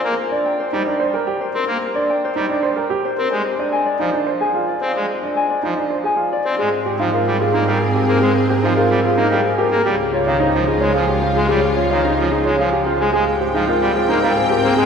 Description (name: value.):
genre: classical, minimalist pattern music.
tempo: 110 BPM.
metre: 3/4.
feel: straight.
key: F dorian, Ab major from 6.6 s.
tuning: A4 = 440 Hz.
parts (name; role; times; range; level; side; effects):
Celtic harp; melody; 0.0-14.9 s; Ab4 to Ab5; -20 LUFS; left 5 dB; none.
pipe organ, trumpet; accompaniment; 0.0-14.9 s; Eb3 to C4; -22 LUFS; right 1 dB; none.
clear grand piano; arpeggios; 0.3-14.9 s; Db4 to C5; -21 LUFS; right 4 dB; none.
rich studio string section; sustained chords; 6.6-14.9 s; C4 to G5; -23 LUFS; equal; none.
warm studio double bass section; bass; 6.6-14.9 s; Db2 to Ab2; -23 LUFS; right 2 dB; none.
room: wet cathedral reverb, RT60 5.1 s.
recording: recorded in a church or concert hall.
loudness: -16 LUFS.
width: side -6 dB against mid.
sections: 0.0-6.6 A section; 6.6-14.9 B section.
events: none.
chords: 0.0 Cm7; 3.3 Fm7; 6.6 Abmaj9; 9.9 Dbmaj9; 13.1 Abmaj9.